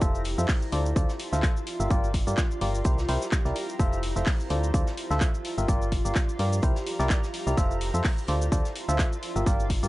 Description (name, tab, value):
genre	piano house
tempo	127 BPM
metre	4/4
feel	swing 55% on 16ths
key	F major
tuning	A4 = 436 Hz
part	barking FM electric piano	riff	0.0-9.9 s	E4 to E5	-31 LUFS	equal	chorus, sidechain pumping, low-pass filter
part	solid FM bass	bass	0.0-9.9 s	F1 to G2	-28 LUFS	equal	transformer saturation, sidechain pumping
part	electronic kick drum	drums	0.0-9.8 s	none	-25 LUFS	equal	none
part	house drum kit	drums	0.0-9.9 s	handclaps, hi-hat, shaker	-35 LUFS	left 1 dB	none
part	vintage brush drum kit	drums	0.0-9.9 s	hi-hat, snare drum	-44 LUFS	right 2 dB	sidechain pumping on hats, high-pass filter on hats, high-pass filter on snare, high-pass filter on room
part	granular cloud pad	texture	0.0-9.9 s	F4 to C6	-35 LUFS	right 1 dB	built-in reverb, sidechain pumping
room	digital ambience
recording	dry, gritty hardware recording, nothing above 10.8 kHz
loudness	-24 LUFS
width	side -18 dB against mid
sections	0.0-9.9 A section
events	none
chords	0.0 Fmaj7; 0.7 Dm7; 1.7 Gm7; 2.9 C7; 3.8 Fmaj7; 4.5 Dm7; 5.4 Gm7; 6.6 C7; 7.6 Fmaj7; 8.3 Dm7; 9.2 Gm7